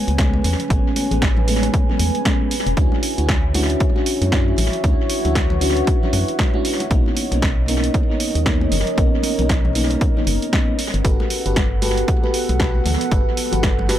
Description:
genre	deep house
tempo	116 BPM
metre	4/4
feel	swing 59% on 16ths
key	unclear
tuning	A4 = 440 Hz
part	dark analog pad	sustained chords	0.0-14.0 s	F#4 to G#5	-28 LUFS	right 2 dB	chorus, sidechain pumping
part	mellow FM electric piano	stabs	0.0-14.0 s	G#3 to B4	-24 LUFS	equal	chorus, sidechain pumping, low-pass filter, analog delay
part	deep dark ambient pad	texture	0.0-14.0 s	B3 to G#5	-27 LUFS	equal	chorus, built-in reverb, sidechain pumping
part	organ-like FM bass	bass	0.1-14.0 s	E1 to F#2	-21 LUFS	equal	sidechain pumping
part	punchy analog drum machine	drums	0.1-14.0 s	hi-hat, snare drum	-25 LUFS	right 1 dB	tape echo
part	congas	percussion	0.1-13.9 s	none	-31 LUFS	left 2 dB	tape echo
part	electronic kick drum	drums	0.2-13.8 s	none	-19 LUFS	equal	none
room	little or no reverb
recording	echo-heavy mix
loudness	-16 LUFS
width	side -11 dB against mid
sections	0.0-14.0 A section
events	none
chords	0.0 Amaj9; 2.8 Dmaj9; 6.9 Bmaj9; 10.8 Gmaj9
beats	0.18 | 0.70 1.22 1.74 2.25 | 2.77 3.29 3.81 4.32 | 4.84 5.36 5.87 6.39 | 6.91 7.43 7.94 8.46 | 8.98 9.49 10.01 10.53 | 11.05 11.56 12.08 12.60 | 13.12 13.63

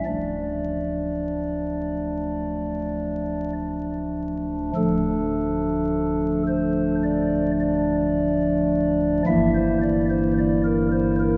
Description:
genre	classical, chorale-style piece for pipe organ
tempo	50-55 BPM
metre	4/4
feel	rubato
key	D minor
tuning	A4 = 441 Hz
part	pipe organ, stopped flute	solo	0.1-11.4 s	D1 to E5	-23 LUFS	equal	none
room	wet church reverb, RT60 3.5 s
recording	heard from further back in the room, vinyl crackle, nothing above 7.5 kHz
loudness	-23 LUFS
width	mono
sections	0.0-4.8 A section; 4.8-11.4 A section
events	none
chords	0.0 Dm; 9.3 Edim/G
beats	| 0.05 1.22 2.39 3.57 | 4.75 5.90 7.03 8.15 | 9.26 10.37

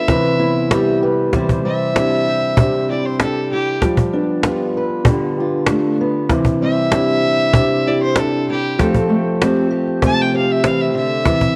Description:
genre	acoustic folk duo or small band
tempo	96 BPM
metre	4/4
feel	straight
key	C major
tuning	A4 = 440 Hz
part	clear fiddle	melody	0.0-11.6 s	G4 to A5	-22 LUFS	equal	cassette tape
part	fingerpicked steel-string acoustic guitar	accompaniment	0.0-11.6 s	C3 to C5	-22 LUFS	equal	cassette tape
part	dark upright piano	arpeggios	0.0-11.6 s	E3 to G4	-22 LUFS	equal	cassette tape
part	cajon	percussion	0.1-11.6 s	none	-19 LUFS	equal	none
room	moderate lush hall reverb, RT60 2.8 s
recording	home recording on cassette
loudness	-17 LUFS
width	mono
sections	0.0-1.3 A section; 1.3-11.6 B section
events	fiddle solo 1.3-11.6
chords	0.1 Cmaj7; 1.3 Cadd9; 3.8 G7; 6.3 Cadd9; 8.8 Fadd9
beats	0.08 0.71 | 1.33 1.95 2.57 3.19 | 3.81 4.44 5.06 5.68 | 6.30 6.92 7.55 8.17 | 8.79 9.41 10.03 10.65 | 11.27

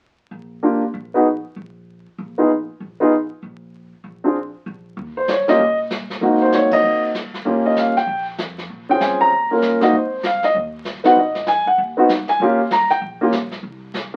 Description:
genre	jazz piano trio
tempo	194 BPM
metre	4/4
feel	swing 62% on 8ths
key	unclear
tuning	A4 = 440 Hz
part	upright bass	bass	0.3-14.2 s	Ab1 to Bb2	-39 LUFS	equal	none
part	warm concert grand piano	melody	0.6-14.2 s	Bb3 to Bb5	-17 LUFS	equal	none
part	jazz brush drum kit	drums	5.0-14.2 s	brushed snare drum, hi-hat, kick drum, ride cymbal, snare drum	-31 LUFS	equal	none
room	moderate studio reverb, RT60 0.6 s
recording	very old 78 rpm record, vinyl crackle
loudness	-18 LUFS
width	mono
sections	0.0-5.0 A section; 5.0-14.2 B section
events	band accent 6.7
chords	0.0 N.C.; 5.0 Eb7(no3); 6.2 Ab9; 7.5 Eb9; 8.7 Bbm7; 9.3 Ebsus2; 9.9 Ab; 11.2 A(b5, no3); 12.4 Eb9; 13.6 N.C.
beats	| 0.01 0.32 0.63 0.94 | 1.25 1.56 1.88 2.19 | 2.50 2.81 3.12 3.43 | 3.74 4.05 4.36 4.67 | 4.98 5.29 5.60 5.91 | 6.22 6.53 6.84 7.15 | 7.46 7.77 8.08 8.39 | 8.70 9.01 9.31 9.62 | 9.93 10.24 10.55 10.86 | 11.17 11.47 11.78 12.09 | 12.40 12.71 13.02 13.33 | 13.63 13.94

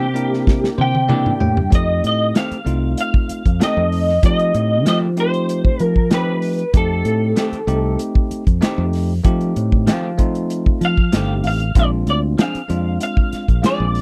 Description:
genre	straight-eighth soul blues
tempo	96 BPM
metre	4/4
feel	straight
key	F mixolydian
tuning	A4 = 438 Hz
part	electric guitar through a small old amp	melody	0.0-14.0 s	G4 to G5	-24 LUFS	equal	ensemble chorus
part	electric guitar through a small old amp	stabs	0.0-13.8 s	Eb3 to Ab4	-27 LUFS	equal	tremolo
part	fingered electric bass	bass	0.0-14.0 s	G1 to F3	-22 LUFS	equal	none
part	bell-like tine electric piano	accompaniment	0.1-14.0 s	Ab3 to G5	-27 LUFS	equal	none
part	warm soul drum kit	drums	0.2-14.0 s	hi-hat, kick drum, snare drum, toms	-18 LUFS	equal	none
room	little or no reverb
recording	dry, close 1970s-style studio recording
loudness	-17 LUFS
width	mono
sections	0.0-1.7 A section; 1.7-14.0 B section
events	clean electric guitar solo 0.0-1.7; drum fill 0.5-1.7; tine electric piano fill 0.5-1.7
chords	0.0 C9; 1.7 F9; 11.8 Bb9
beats	0.47 1.10 | 1.73 2.35 2.98 3.61 | 4.24 4.86 5.49 6.12 | 6.74 7.37 8.00 8.62 | 9.25 9.88 10.50 11.13 | 11.76 12.38 13.01 13.63

